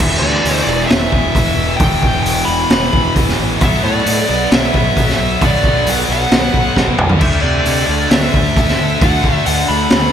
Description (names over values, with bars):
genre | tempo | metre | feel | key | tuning
hard rock | 133 BPM | 4/4 | straight | unclear | A4 = 438 Hz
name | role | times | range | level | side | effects
high-gain lead guitar | melody | 0.0-10.1 s | D5 to B5 | -18 LUFS | equal | distortion
heavy high-gain guitar | riff | 0.0-10.1 s | E2 to D4 | -20 LUFS | left 11 dB | distortion
tight distorted guitar | riff | 0.0-10.1 s | E2 to D4 | -21 LUFS | right 11 dB | distortion, slapback echo
fuzz picked electric bass | bass | 0.0-10.1 s | E1 to C3 | -20 LUFS | equal | overdrive
raw garage drum kit | drums | 0.0-10.0 s | crash cymbal, hi-hat, kick drum, snare drum, toms | -15 LUFS | equal | none
room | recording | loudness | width
light reverb, small room ambience | none | -11 LUFS | side -9 dB against mid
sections
0.0-10.1 A section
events
drum fill 6.8-7.2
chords
0.0 E5; 3.6 Bm; 7.2 D